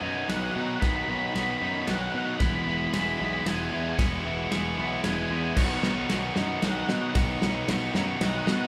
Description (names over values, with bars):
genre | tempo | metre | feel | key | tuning
post-rock | 114 BPM | 3/4 | straight | unclear | A4 = 440 Hz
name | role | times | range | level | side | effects
octave-fuzz lead guitar | melody | 0.0-8.7 s | F#5 to C#6 | -34 LUFS | equal | distortion
twelve-string electric guitar | arpeggios | 0.0-8.7 s | E2 to G#4 | -38 LUFS | equal | none
distorted electric guitar | riff | 0.0-8.7 s | B2 to E4 | -33 LUFS | equal | overdrive
fuzz picked electric bass | bass | 0.0-8.7 s | E1 to B2 | -36 LUFS | equal | overdrive
loose indie drum kit | drums | 0.3-8.6 s | crash cymbal, kick drum, ride cymbal, snare drum | -32 LUFS | equal | none
room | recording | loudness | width
moderate recital hall reverb, RT60 1.6 s | recorded in a church or concert hall | -27 LUFS | mono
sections
0.0-8.7 A section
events
build-up 0.0-8.7; drum fill 0.0-8.7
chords
0.0 B; 2.4 E; 5.6 B